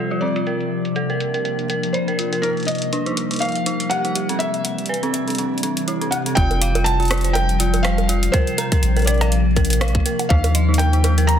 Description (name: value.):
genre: IDM.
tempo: 122 BPM.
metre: 4/4.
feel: swing 56% on 16ths.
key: unclear.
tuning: A4 = 440 Hz.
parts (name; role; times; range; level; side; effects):
felt-muted upright piano; melody; 0.0-11.4 s; Bb4 to Bb5; -25 LUFS; equal; vintage 12-bit sampler grit, ping-pong delay.
glassy FM pad; sustained chords; 0.0-11.4 s; C3 to E5; -24 LUFS; left 2 dB; ensemble chorus, built-in reverb.
dark detuned synth bell; arpeggios; 0.0-11.3 s; C4 to Bb5; -25 LUFS; right 2 dB; chorus, low-pass filter, ping-pong delay.
booming analog drum machine; drums; 0.1-11.4 s; bongos, cowbell, hi-hat, rim click; -25 LUFS; right 1 dB; low-pass filter on hats, low-pass filter on snare, low-pass filter on perc.
warm sub bass; bass; 6.4-11.4 s; F1 to Eb2; -18 LUFS; equal; tube saturation.
electronic kick drum; drums; 6.4-10.4 s; none; -18 LUFS; equal; overdrive.
room: light reverb.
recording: dense, heavily limited modern master.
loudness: -17 LUFS.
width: side -9 dB against mid.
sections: 0.0-6.4 A section; 6.4-11.4 B section.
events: none.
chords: 0.5 Bbadd9; 2.4 Ebadd9; 4.2 Cmaj9; 6.4 Fadd9; 8.3 Bbadd9; 10.3 Ebadd9.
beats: | 0.47 0.96 1.45 1.94 | 2.43 2.93 3.42 3.91 | 4.40 4.89 5.38 5.88 | 6.37 6.86 7.35 7.84 | 8.34 8.83 9.32 9.81 | 10.30 10.79 11.29.